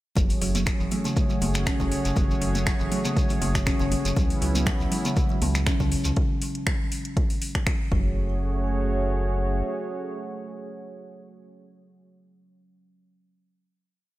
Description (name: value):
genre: afro house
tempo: 120 BPM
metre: 4/4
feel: swing 54% on 16ths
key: F# minor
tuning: A4 = 439 Hz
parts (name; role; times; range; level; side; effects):
- warm analog pad; sustained chords; 0.2-12.1 s; A3 to C#5; -31 LUFS; right 2 dB; chorus, sidechain pumping
- kalimba; arpeggios; 0.2-8.4 s; C#3 to C#4; -30 LUFS; equal; sidechain pumping, digital delay
- round analog bass; bass; 0.2-9.6 s; F#1 to C#2; -27 LUFS; equal; sidechain pumping
- afro-pop drum kit; drums; 0.2-7.8 s; finger snaps, hi-hat; -32 LUFS; left 1 dB; studio reverb
- electronic kick drum; drums; 0.2-8.0 s; none; -25 LUFS; equal; overdrive, studio reverb
- congas; percussion; 0.2-5.9 s; none; -34 LUFS; right 2 dB; none
- shekere; percussion; 0.2-6.1 s; none; -36 LUFS; equal; none
room: small room ambience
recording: none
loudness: -22 LUFS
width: side -16 dB against mid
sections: 0.2-8.2 drop; 8.2-12.2 final hit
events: drop 0.2-8.2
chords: 0.2 F#madd9; 4.2 C#m7; 7.9 F#madd9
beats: | 0.17 0.67 1.17 1.67 | 2.17 2.67 3.17 3.67 | 4.17 4.67 5.17 5.67 | 6.17 6.67 7.17 7.67 | 8.17 8.67 9.17 9.67 | 10.17 10.67 11.17 11.67